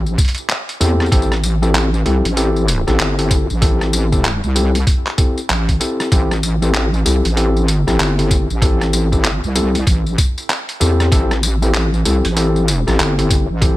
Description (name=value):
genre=glitch hop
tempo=96 BPM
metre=4/4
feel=swing 62% on 16ths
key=A minor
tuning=A4 = 440 Hz
part: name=wobble bass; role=bass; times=0.0-13.8 s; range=G1 to E2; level=-16 LUFS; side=equal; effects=chorus, overdrive
part: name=boom bap sampler-style drum kit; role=drums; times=0.1-13.8 s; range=handclaps, hi-hat, rim click, tambourine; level=-20 LUFS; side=equal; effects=small room ambience
part: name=electronic kick drum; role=drums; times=0.2-13.8 s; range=none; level=-15 LUFS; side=equal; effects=small room ambience
part: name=overdriven tine electric piano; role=stabs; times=0.8-13.8 s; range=C4 to A4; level=-20 LUFS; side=left 2 dB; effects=sidechain pumping, ping-pong delay
room=digital ambience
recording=none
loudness=-13 LUFS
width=side -16 dB against mid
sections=0.0-13.8 A section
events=none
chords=0.0 Am7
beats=0.49 | 1.12 1.74 2.37 2.99 | 3.62 4.24 4.87 5.49 | 6.12 6.74 7.37 7.99 | 8.62 9.24 9.87 10.49 | 11.12 11.74 12.37 12.99 | 13.62